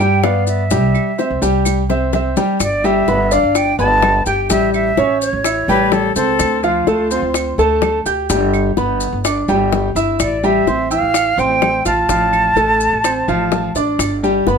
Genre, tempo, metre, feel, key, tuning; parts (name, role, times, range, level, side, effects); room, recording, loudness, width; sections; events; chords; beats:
latin, Cuban son and guajira; 126 BPM; 4/4; straight; A4 = 438 Hz
silver concert flute; melody; 0.0-6.1, 10.2-13.7 s; C#5 to A5; -17 LUFS; right 2 dB
bright grand piano; arpeggios; 0.0-14.6 s; E3 to G6; -16 LUFS; equal
upright bass; bass; 0.0-14.6 s; G1 to G2; -21 LUFS; right 1 dB
bongos; percussion; 0.0-14.6 s; -22 LUFS; left 10 dB
maracas; percussion; 0.0-14.6 s; -27 LUFS; left 5 dB
claves; percussion; 0.2-14.2 s; -27 LUFS; right 10 dB
breathy bright jazz flute; second line; 5.7-7.6 s; F4 to B4; -19 LUFS; left 6 dB
moderate studio reverb, RT60 0.6 s; -13 LUFS; side -6 dB against mid
0.0-2.6 A section; 2.6-14.6 B section
drum fill 1.7-2.6
0.0 G; 0.7 C; 2.6 G; 4.5 A7; 6.4 Dm7; 8.3 G; 10.2 Am7; 12.1 Dm7/A; 14.0 G
0.23 | 0.71 1.18 1.66 2.13 | 2.61 3.08 3.56 4.03 | 4.50 4.98 5.45 5.92 | 6.40 6.87 7.35 7.82 | 8.29 8.77 9.24 9.72 | 10.19 10.67 11.14 11.62 | 12.09 12.57 13.04 13.52 | 13.99 14.47